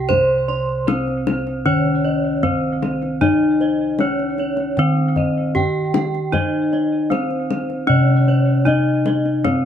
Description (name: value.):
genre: Javanese gamelan.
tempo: 77 BPM.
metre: 4/4.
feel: straight.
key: unclear.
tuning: A4 = 440 Hz.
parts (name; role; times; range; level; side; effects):
gamelan-type bronze metallophone; melody; 0.0-9.7 s; C4 to C5; -20 LUFS; equal; tape echo.
gamelan-type bronze metallophone; arpeggios; 0.0-9.7 s; C5 to C6; -27 LUFS; right 4 dB; none.
gamelan-type bossed gongs; bass; 0.0-9.7 s; C3 to C5; -21 LUFS; equal; none.
gamelan-type bossed gongs; arpeggios; 0.1-9.7 s; C5 to G5-30c; -29 LUFS; left 4 dB; none.
kendang; percussion; 0.1-9.6 s; none; -24 LUFS; left 5 dB; none.
room: light reverb.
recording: dark, warm production.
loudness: -16 LUFS.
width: side -9 dB against mid.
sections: 0.0-9.7 A section.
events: none.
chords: none.